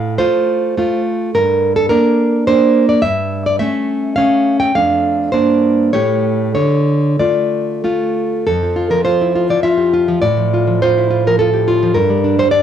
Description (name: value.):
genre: romantic piece for solo classical guitar.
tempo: 91-108 BPM.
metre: 3/4.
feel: rubato.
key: D minor, F major from 8.5 s.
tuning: A4 = 439 Hz.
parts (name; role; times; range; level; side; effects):
nylon-string guitar; solo; 0.0-12.6 s; F2 to G5; -12 LUFS; equal; cassette tape.
room: light reverb.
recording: home recording on cassette, small room ambience.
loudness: -12 LUFS.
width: side -9 dB against mid.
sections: 0.0-8.5 A section; 8.5-12.6 B section.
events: none.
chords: 0.0 F/A; 1.3 Gm; 3.0 A7/G; 4.7 Dm/F; 5.3 Gm; 5.9 A7; 6.6 Dm; 8.5 Fmaj9; 10.2 F/A; 12.0 G5.